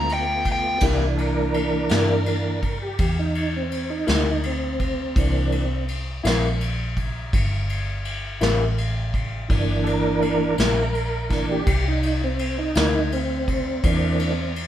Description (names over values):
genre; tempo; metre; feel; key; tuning
slow blues; 55 BPM (dotted quarters); 12/8; straight; C mixolydian; A4 = 440 Hz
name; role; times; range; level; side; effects
smooth overdriven lead guitar; melody; 0.0-0.8 s; G5 to Bb5; -24 LUFS; left 1 dB; none
tonewheel organ; sustained chords; 0.0-14.5 s; E3 to Bb4; -24 LUFS; right 2 dB; slow rotary speaker, chorus vibrato
vintage muted fingered electric bass; bass; 0.0-14.7 s; G1 to G2; -25 LUFS; equal; none
vintage brush drum kit; drums; 0.1-14.7 s; crash cymbal, kick drum, ride cymbal, snare drum; -26 LUFS; equal; none
electric guitar through a small old amp; accompaniment; 0.8-13.0 s; C3 to E4; -25 LUFS; left 4 dB; harmonic tremolo
room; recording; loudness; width
moderate large studio reverb, RT60 1.1 s; band playing live in one room; -20 LUFS; side -11 dB against mid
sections
0.8-14.7 A section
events
tonewheel organ solo 0.8-14.7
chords
0.0 G7; 0.8 C7